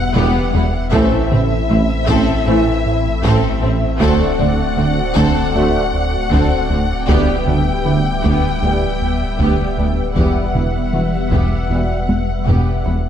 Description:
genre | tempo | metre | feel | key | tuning
cinematic, hybrid orchestral and electronic film score | 78 BPM | 4/4 | straight | E minor | A4 = 441 Hz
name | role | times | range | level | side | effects
warm symphonic violin section | melody | 0.0-13.0 s | E5 to G5 | -24 LUFS | left 5 dB | none
phased analog pad | sustained chords | 0.0-13.1 s | G3 to F#5 | -23 LUFS | left 1 dB | phaser, chorus, tremolo
pure sine sub bass | bass | 0.0-13.1 s | D1 to A1 | -23 LUFS | left 1 dB | none
warm symphonic violin section | second line | 0.1-12.9 s | C4 to A4 | -26 LUFS | left 3 dB | none
rich symphonic viola section | accompaniment | 0.2-12.9 s | B3 to C4 | -26 LUFS | equal | none
rubbery square bass | riff | 0.2-13.1 s | D2 to A3 | -21 LUFS | right 1 dB | none
dark symphonic cello section | bass | 0.2-12.9 s | D2 to A2 | -24 LUFS | right 3 dB | none
mellow tuba | bass | 0.2-13.0 s | E1 to D2 | -23 LUFS | right 3 dB | none
warm symphonic double bass section | bass | 0.2-12.9 s | E1 to D2 | -24 LUFS | right 2 dB | none
solo taiko drums | drums | 0.2-13.1 s | none | -22 LUFS | left 1 dB | none
dark French horn section | sustained chords | 0.9-12.0 s | B3 to G4 | -24 LUFS | left 3 dB | none
warm trombone section | sustained chords | 0.9-12.0 s | D3 to A3 | -25 LUFS | right 3 dB | none
room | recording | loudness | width
moderate scoring stage reverb, RT60 1.7 s | dark, warm production | -14 LUFS | side -9 dB against mid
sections
0.0-13.1 A section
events
drum fill 0.0-0.9, 12.1-13.1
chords
0.0 Emadd9; 0.9 Am; 4.0 D7; 7.1 G6/D; 10.2 Emadd9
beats
0.16 | 0.93 1.70 2.47 3.24 | 4.01 4.78 5.54 6.31 | 7.08 7.85 8.62 9.39 | 10.16 10.93 11.70 12.47

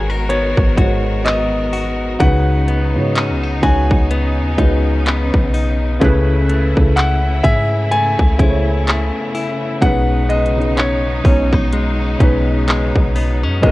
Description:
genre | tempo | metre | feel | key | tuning
contemporary R&B | 63 BPM | 4/4 | swing 58% on 16ths | unclear | A4 = 440 Hz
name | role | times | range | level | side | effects
clear concert grand piano | melody | 0.0-13.7 s | C#5 to G#5 | -21 LUFS | left 1 dB | none
felt-muted upright piano | accompaniment | 0.0-13.7 s | G#2 to C#5 | -20 LUFS | equal | none
bright studio string section | sustained chords | 0.0-13.7 s | C#3 to A#4 | -25 LUFS | equal | none
direct-recorded clean electric guitar | arpeggios | 0.0-13.7 s | B2 to A#4 | -23 LUFS | left 3 dB | none
warm 808-style bass | bass | 0.0-13.7 s | G#1 to G#2 | -18 LUFS | equal | none
synth chime | texture | 0.0-0.7, 13.2-13.7 s | G#4 to C#5 | -36 LUFS | left 1 dB | none
trap drum kit | drums | 0.3-13.7 s | handclaps, hi-hat, kick drum, rim click | -16 LUFS | equal | none
room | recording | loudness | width
small room ambience | worn, warbling old tape, cassette tape, warbly pitch drift | -13 LUFS | side -18 dB against mid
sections
0.0-13.7 A section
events
none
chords
0.0 G#m9; 2.2 C#9sus4; 6.0 Amaj7/C#; 9.8 B69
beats
0.30 1.25 | 2.20 3.16 4.11 5.06 | 6.01 6.96 7.92 8.87 | 9.82 10.78 11.73 12.68 | 13.63

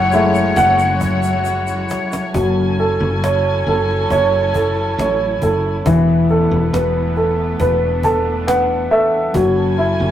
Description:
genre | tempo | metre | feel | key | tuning
pop ballad | 69 BPM | 4/4 | straight | F# minor | A4 = 443 Hz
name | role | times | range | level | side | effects
warm grand piano | accompaniment | 0.0-10.1 s | E3 to A5 | -16 LUFS | equal | none
warm studio string section | sustained chords | 0.0-10.1 s | F#3 to G#5 | -22 LUFS | left 1 dB | none
woody fretless electric bass | bass | 0.0-10.1 s | E1 to A1 | -21 LUFS | equal | none
cajon | drums | 0.1-9.9 s | none | -26 LUFS | left 1 dB | none
tube shaker | percussion | 0.1-2.3 s | none | -39 LUFS | right 4 dB | none
room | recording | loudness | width
wet studio reverb, RT60 0.6 s | rough rehearsal-room recording, tube saturation | -14 LUFS | side -11 dB against mid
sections
0.0-2.3 A section; 2.3-10.1 B section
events
grand piano solo 0.0-2.3; drum fill 1.5-2.3; grand piano fill 7.6-9.3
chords
0.0 F#m7; 5.9 Esus4; 9.3 F#m7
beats
0.57 1.46 | 2.35 3.23 4.11 4.98 | 5.86 6.73 7.60 8.47 | 9.34

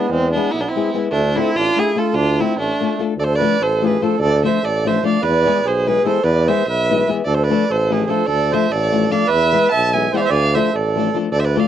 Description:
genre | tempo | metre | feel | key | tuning
balkan folk | 294 BPM (eighths) | 5/8 | straight | D dorian sharp4 | A4 = 435 Hz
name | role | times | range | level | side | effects
rich violin | melody | 0.0-11.7 s | C4 to A5 | -20 LUFS | right 1 dB | cassette tape
accordion | second line | 0.0-11.7 s | G#3 to E5 | -21 LUFS | right 8 dB | none
flamenco guitar | accompaniment | 0.0-11.7 s | E3 to A4 | -20 LUFS | left 7 dB | none
warm tuba | bass | 0.1-11.6 s | A1 to E2 | -20 LUFS | equal | none
room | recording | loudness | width
moderate small room reverb, RT60 0.5 s | home recording on cassette | -15 LUFS | side -10 dB against mid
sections
0.0-3.2 A section; 3.2-11.3 B section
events
none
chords
0.0 E; 1.1 Dm; 5.2 E; 7.3 Dm; 9.3 E; 10.3 Dm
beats
| 0.10 0.30 0.51 0.71 0.92 | 1.12 1.33 1.53 1.74 1.95 | 2.15 2.35 2.56 2.76 2.97 | 3.17 3.38 3.58 3.79 3.99 | 4.20 4.40 4.60 4.81 5.01 | 5.22 5.42 5.62 5.83 6.03 | 6.24 6.44 6.64 6.85 7.05 | 7.25 7.46 7.66 7.86 8.07 | 8.27 8.47 8.68 8.88 9.09 | 9.29 9.49 9.70 9.90 10.10 | 10.30 10.51 10.71 10.91 11.12 | 11.32 11.52

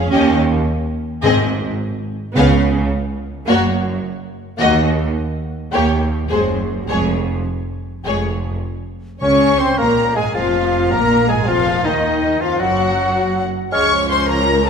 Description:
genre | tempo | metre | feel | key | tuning
quick classical-period movement for symphony orchestra | 106 BPM | 4/4 | straight | Db major | A4 = 443 Hz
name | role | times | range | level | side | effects
warm studio violin section | melody | 0.0-14.7 s | C5 to Db6 | -23 LUFS | left 4 dB | none
dark studio violin section | second line | 0.0-14.7 s | Eb4 to Db5 | -22 LUFS | left 2 dB | none
warm studio viola section | accompaniment | 0.0-14.7 s | Eb3 to Db4 | -22 LUFS | equal | none
rich studio double bass section | bass | 0.0-14.7 s | F1 to Eb2 | -23 LUFS | right 2 dB | none
warm studio cello section | bass | 0.0-14.7 s | Db2 to Db3 | -23 LUFS | right 3 dB | none
timpani | percussion | 1.2-3.2, 9.2-10.0 s | Ab2 to Db3 | -24 LUFS | equal | none
mellow hollow silver concert flute | second line | 9.2-14.0 s | Eb5 to F6 | -25 LUFS | left 1 dB | none
warm clarinet | second line | 9.2-13.9 s | Eb4 to Db5 | -26 LUFS | left 4 dB | none
warm oboe | second line | 9.2-13.9 s | Eb4 to Db5 | -25 LUFS | right 1 dB | none
clear bassoon | accompaniment | 9.2-13.9 s | Eb3 to Db4 | -23 LUFS | equal | none
warm French horn section | sustained chords | 9.2-14.7 s | Eb3 to Db4 | -24 LUFS | left 4 dB | none
room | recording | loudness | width
wet scoring stage reverb, RT60 1.9 s | minimal, uncompressed stereo recording | -15 LUFS | side -6 dB against mid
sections
0.0-9.2 A section; 9.2-14.7 A section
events
none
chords
0.1 Eb7; 1.2 Ab; 2.4 Db7; 3.5 Gb; 4.6 Ebm; 6.3 Ab7/Gb; 6.9 Db/F; 9.2 Db; 11.5 Ebmadd9/F; 13.7 Db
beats
| 0.11 0.67 1.23 1.79 | 2.35 2.92 3.48 4.04 | 4.60 5.16 5.73 6.30 | 6.89 7.47 8.05 8.64 | 9.22 9.79 10.35 10.91 | 11.47 12.04 12.60 13.16 | 13.73 14.29

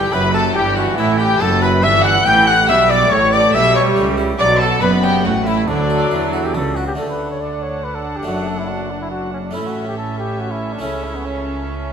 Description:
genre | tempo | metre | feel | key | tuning
classical, baroque-style concerto movement with solo episodes | 140 BPM | 3/4 | straight | D major | A4 = 440 Hz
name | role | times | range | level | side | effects
dark trumpet | melody | 0.0-11.5 s | B3 to G5 | -18 LUFS | left 2 dB | none
rich chamber violin section | melody | 0.0-11.9 s | D5 to G6 | -23 LUFS | left 1 dB | none
rich chamber violin section | second line | 0.0-11.9 s | D4 to G5 | -23 LUFS | left 2 dB | none
harpsichord | accompaniment | 0.0-11.9 s | F#2 to B4 | -25 LUFS | left 1 dB | none
warm chamber viola section | accompaniment | 0.0-11.9 s | E3 to D4 | -23 LUFS | right 2 dB | none
rich chamber double bass section | bass | 0.0-11.9 s | F#1 to E2 | -23 LUFS | right 3 dB | none
warm chamber cello section | bass | 0.0-11.9 s | F#2 to E3 | -24 LUFS | right 4 dB | none
room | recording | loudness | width
moderate scoring stage reverb, RT60 1.8 s | none | -14 LUFS | side -7 dB against mid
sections
0.0-7.0 A section; 7.0-11.9 B section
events
none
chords
0.0 Em; 0.6 Em/G; 3.1 A7; 4.4 Bm; 5.2 A; 5.7 D; 8.3 D/F#; 9.6 A; 10.8 A/C#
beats
0.13 | 0.56 0.98 1.41 | 1.83 2.26 2.68 | 3.11 3.54 3.96 | 4.39 4.82 5.25 | 5.68 6.11 6.55 | 6.98 7.41 7.84 | 8.27 8.70 9.12 | 9.55 9.98 10.40 | 10.83 11.26 11.68

